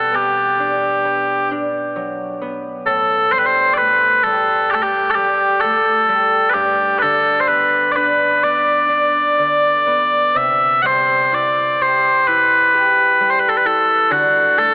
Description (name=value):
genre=celtic folk, Celtic slow air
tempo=65 BPM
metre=4/4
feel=rubato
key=unclear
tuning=A4 = 441 Hz
part: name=mellow small bagpipes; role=melody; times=0.0-14.7 s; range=F#4 to F#5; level=-13 LUFS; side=equal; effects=none
part: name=concert harp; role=accompaniment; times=0.0-14.7 s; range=G2 to G4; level=-23 LUFS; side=equal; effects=none
room=wet cathedral reverb, RT60 5.5 s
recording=AM radio sound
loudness=-13 LUFS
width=side -33 dB against mid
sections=0.0-14.7 A section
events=none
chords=0.0 Gmaj7/B; 2.9 A7sus2; 6.6 G; 10.4 C; 14.1 D